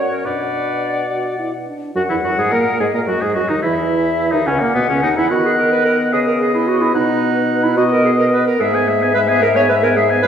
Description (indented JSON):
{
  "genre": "quick classical-period movement for wind quintet",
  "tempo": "72 BPM (dotted quarters)",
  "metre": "6/8",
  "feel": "straight",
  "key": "B major",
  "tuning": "A4 = 440 Hz",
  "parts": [
    { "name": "hollow concert flute", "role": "melody", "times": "0.0-10.3 s", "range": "B4 to F#5", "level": "-21 LUFS", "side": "left 6 dB", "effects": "none" },
    { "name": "clear oboe", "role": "second line", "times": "0.0-10.3 s", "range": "A#3 to G#5", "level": "-21 LUFS", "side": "left 1 dB", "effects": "none" },
    { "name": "clear clarinet", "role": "accompaniment", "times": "0.0-10.3 s", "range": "A#3 to C#5", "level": "-18 LUFS", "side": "right 4 dB", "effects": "none" },
    { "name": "warm French horn", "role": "accompaniment", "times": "0.0-10.3 s", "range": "A#2 to F#4", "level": "-22 LUFS", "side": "equal", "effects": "none" },
    { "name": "mellow bassoon", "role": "bass", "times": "0.0-10.3 s", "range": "C#2 to D#3", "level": "-22 LUFS", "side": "equal", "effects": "none" }
  ],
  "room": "wet recital hall reverb, RT60 1.6 s",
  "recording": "heard from further back in the room",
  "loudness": "-14 LUFS",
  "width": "side -8 dB against mid",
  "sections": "0.0-2.0 A section; 2.0-10.3 A section",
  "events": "none",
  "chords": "0.2 Bm; 2.0 D#madd11; 3.6 F#7; 5.3 B/D#; 7.0 B; 8.6 E/G#"
}